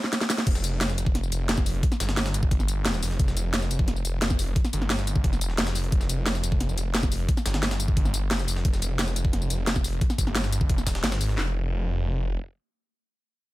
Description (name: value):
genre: dark technical drum and bass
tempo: 176 BPM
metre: 4/4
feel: straight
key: unclear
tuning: A4 = 441 Hz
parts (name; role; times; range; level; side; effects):
- drum and bass drum kit; drums; 0.0-11.3 s; crash cymbal, hi-hat, snare drum, tambourine; -28 LUFS; equal; overdrive
- breakbeat sampler-style drum kit; drums; 0.1-11.4 s; hi-hat, snare drum; -38 LUFS; equal; none
- snarling distorted saw bass; bass; 0.5-12.4 s; Eb1 to Ab1; -26 LUFS; equal; distortion, overdrive, sidechain pumping
- drum and bass drum kit; drums; 0.5-11.5 s; handclaps, kick drum, snare drum; -24 LUFS; equal; overdrive
room: digital ambience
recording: none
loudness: -23 LUFS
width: side -17 dB against mid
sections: 0.0-11.4 A section; 11.4-13.5 B section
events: break 0.0-0.5; drop 0.0-11.4; drum fill 0.0-0.5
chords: none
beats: 0.13 | 0.47 0.81 1.15 1.49 | 1.83 2.17 2.51 2.85 | 3.19 3.54 3.88 4.22 | 4.56 4.90 5.24 5.58 | 5.92 6.26 6.60 6.95 | 7.29 7.63 7.97 8.31 | 8.65 8.99 9.33 9.67 | 10.01 10.35 10.70 11.04 | 11.38 11.72 12.06